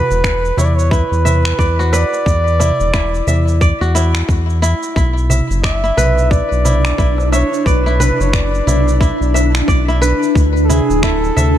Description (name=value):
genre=organic downtempo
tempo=89 BPM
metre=4/4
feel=swing 59% on 16ths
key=unclear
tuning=A4 = 440 Hz
part: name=trumpet with bucket mute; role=melody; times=0.0-11.6 s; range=G#4 to E5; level=-20 LUFS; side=right 1 dB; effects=ping-pong delay
part: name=kora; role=arpeggios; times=0.0-11.6 s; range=E4 to E5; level=-20 LUFS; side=equal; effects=low-pass filter, ping-pong delay
part: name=round analog bass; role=bass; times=0.0-11.6 s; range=D1 to E2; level=-15 LUFS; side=equal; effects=none
part: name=electronic shaker and finger snaps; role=drums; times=0.1-11.5 s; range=none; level=-24 LUFS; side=right 2 dB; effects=none
part: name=electronic kick drum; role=drums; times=0.2-11.2 s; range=none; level=-15 LUFS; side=equal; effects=none
part: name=darbuka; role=percussion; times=0.6-11.5 s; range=none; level=-22 LUFS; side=right 2 dB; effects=none
part: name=granular cloud pad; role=sustained chords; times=6.2-11.6 s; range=D4 to D5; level=-20 LUFS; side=equal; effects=built-in reverb, sidechain pumping
room=light reverb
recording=none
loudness=-12 LUFS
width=side -11 dB against mid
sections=0.0-11.6 A section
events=none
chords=0.0 Esus2; 5.0 Bm; 10.4 Dsus2